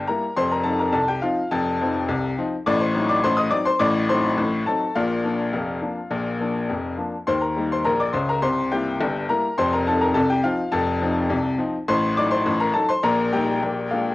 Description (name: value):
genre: ragtime piano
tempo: 104 BPM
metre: 2/4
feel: straight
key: unclear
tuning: A4 = 441 Hz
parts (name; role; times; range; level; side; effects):
- bright upright piano; solo; 0.0-14.1 s; F1 to Eb6; -20 LUFS; left 2 dB; cassette tape
room: light reverb, small room ambience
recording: home recording on cassette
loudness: -20 LUFS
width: side -18 dB against mid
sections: 0.0-14.1 A section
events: none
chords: 0.4 F7; 2.7 Adim7; 5.0 Bb; 7.3 Eb; 8.4 C7; 9.6 F7; 11.9 Adim7; 13.0 Eb/Bb; 13.6 Bb7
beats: | 0.36 0.94 | 1.51 2.09 | 2.66 3.23 | 3.81 4.38 | 4.96 5.54 | 6.12 6.70 | 7.28 7.86 | 8.44 9.01 | 9.59 10.16 | 10.74 11.31 | 11.89 12.46 | 13.04 13.62